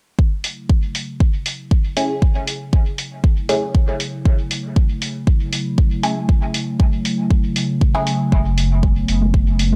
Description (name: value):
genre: dub techno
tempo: 118 BPM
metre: 4/4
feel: straight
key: F# minor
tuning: A4 = 437 Hz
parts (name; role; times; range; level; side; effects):
- warbly tape-like pad; sustained chords; 0.2-9.8 s; C#3 to E4; -27 LUFS; equal; chorus, built-in reverb, sidechain pumping
- electronic kick drum; drums; 0.2-9.4 s; none; -18 LUFS; equal; none
- electronic hi-hat; drums; 0.4-9.7 s; none; -27 LUFS; equal; dub echo
- filtered dub chord stab; stabs; 2.0-8.1 s; A3 to G#4; -26 LUFS; equal; phaser, sidechain pumping, dub echo
- pure sine sub bass; bass; 8.3-9.8 s; F#1 to A1; -20 LUFS; equal; tube saturation, sidechain pumping
- congas; percussion; 8.3-9.8 s; none; -27 LUFS; equal; none
room: light reverb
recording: echo-heavy mix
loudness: -18 LUFS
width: mono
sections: 0.2-9.8 A section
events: none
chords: 0.2 F#m7